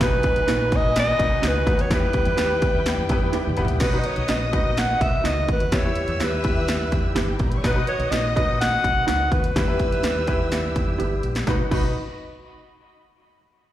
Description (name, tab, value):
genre	uptempo 1960s-style soul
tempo	125 BPM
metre	4/4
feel	straight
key	B major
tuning	A4 = 441 Hz
part	breathy alto saxophone	melody	0.0-11.0 s	B4 to F#5	-24 LUFS	equal	slapback echo
part	warm studio violin section	second line	0.0-11.9 s	D#4 to E6	-33 LUFS	equal	slapback echo, tape echo
part	bright baby grand piano	accompaniment	0.0-11.9 s	B3 to B5	-30 LUFS	left 2 dB	slapback echo
part	percussive tonewheel organ	sustained chords	0.0-11.7 s	D#3 to G4	-32 LUFS	equal	fast rotary speaker, overdrive
part	fingered electric bass	bass	0.0-11.9 s	G1 to F#2	-26 LUFS	equal	none
part	techno drum kit	drums	0.0-11.8 s	crash cymbal, hi-hat, kick drum, snare drum, toms	-24 LUFS	equal	none
part	mellow electric guitar	stabs	0.5-11.9 s	D#4 to B4	-31 LUFS	right 7 dB	lush chorus, slapback echo
room	light reverb, digital ambience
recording	live gig heard through the venue's PA, recital hall reverb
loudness	-19 LUFS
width	side -13 dB against mid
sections	0.0-3.8 A section; 3.8-11.5 B section; 11.5-13.4 C section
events	grand piano fill 2.9-3.8; drum fill 3.3-3.8, 11.0-11.5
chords	0.0 B; 1.9 Em; 3.8 B; 5.7 Em; 7.6 B; 9.6 Em; 11.5 B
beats	| 0.01 0.48 0.96 1.43 | 1.91 2.38 2.86 3.34 | 3.81 4.29 4.77 5.25 | 5.72 6.20 6.68 7.16 | 7.64 8.12 8.60 9.07 | 9.55 10.03 10.51 10.99 | 11.47